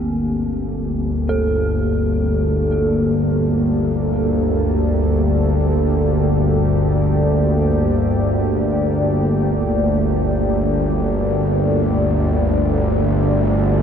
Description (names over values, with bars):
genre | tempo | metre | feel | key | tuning
dark ambient drone | free time | none | none | G minor | A4 = 439 Hz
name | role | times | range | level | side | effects
deep dark ambient pad | sustained chords | 0.0-13.8 s | Bb3 to D5 | -21 LUFS | left 1 dB | chorus, built-in reverb
dark detuned synth bell | arpeggios | 0.0-13.8 s | C4 to A4 | -27 LUFS | right 2 dB | chorus, phaser, tape echo
bowed-like drone | drone | 0.0-13.8 s | G1 to D2 | -17 LUFS | equal | built-in reverb
room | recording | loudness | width
moderate huge ambient reverb, RT60 9.3 s | none | -16 LUFS | side -8 dB against mid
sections
0.0-13.8 A section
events
fade-out on ambient pad 0.0-13.8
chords
0.0 Gmadd9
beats
free time